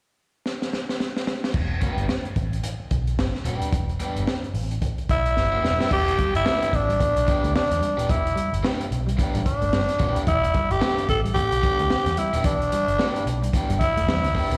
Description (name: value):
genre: funk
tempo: 110 BPM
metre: 4/4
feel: swing 60% on 16ths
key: E minor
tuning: A4 = 437 Hz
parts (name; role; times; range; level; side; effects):
- crunchy breakbeat drum kit; drums; 0.5-14.6 s; crash cymbal, hi-hat, kick drum, snare drum; -28 LUFS; equal; none
- vintage muted picked electric bass; bass; 1.5-14.6 s; D#1 to E2; -28 LUFS; equal; none
- raw garage guitar; accompaniment; 1.8-14.6 s; E3 to G4; -34 LUFS; equal; overdrive, slapback echo
- growling tenor saxophone; melody; 5.1-14.6 s; D4 to A4; -25 LUFS; equal; slapback echo
- clean electric guitar; riff; 5.9-14.6 s; E3 to B3; -36 LUFS; equal; analog chorus, slapback echo
room: light reverb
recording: live gig heard through the venue's PA, recital hall reverb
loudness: -23 LUFS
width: mono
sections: 0.0-1.5 A section; 1.5-5.9 B section; 5.9-14.6 C section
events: drum fill 0.5-1.5, 5.4-5.9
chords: 0.0 N.C.; 1.5 Em7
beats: 0.45 1.00 | 1.54 2.09 2.64 3.18 | 3.73 4.28 4.82 5.37 | 5.91 6.46 7.00 7.55 | 8.09 8.63 9.18 9.72 | 10.27 10.81 11.35 11.90 | 12.44 12.98 13.53 14.07